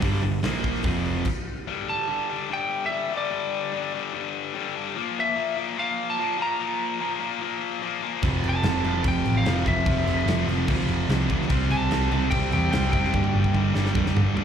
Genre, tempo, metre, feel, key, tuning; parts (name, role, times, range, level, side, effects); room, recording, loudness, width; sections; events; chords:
hard rock; 146 BPM; 4/4; straight; A4 = 440 Hz
high-gain distorted guitar; riff; 0.0-14.4 s; F2 to C4; -29 LUFS; left 10 dB; distortion, slapback echo
sludgy distorted guitar; riff; 0.0-1.3, 8.2-14.4 s; F2 to C4; -26 LUFS; right 8 dB; overdrive, slapback echo
hollow-body short-scale picked electric bass; bass; 0.0-1.2, 8.2-14.4 s; F1 to F2; -26 LUFS; left 1 dB
huge arena drum kit; drums; 0.0-1.4, 8.2-14.4 s; crash cymbal, hi-hat, kick drum, snare drum, toms; -28 LUFS; equal
lightly driven lead guitar; melody; 1.9-14.3 s; D5 to Bb5; -28 LUFS; left 1 dB; slapback echo, digital delay
small room ambience; live gig heard through the venue's PA, club reverb; -22 LUFS; side -8 dB against mid
0.0-1.7 A section; 1.7-14.4 B section
stop 1.3-1.7; drum fill 13.1-14.4
0.0 G5; 0.4 Bb5; 0.8 F5; 1.3 N.C.; 1.7 G5; 5.0 Bb5; 8.2 F5; 11.5 C5; 13.1 G5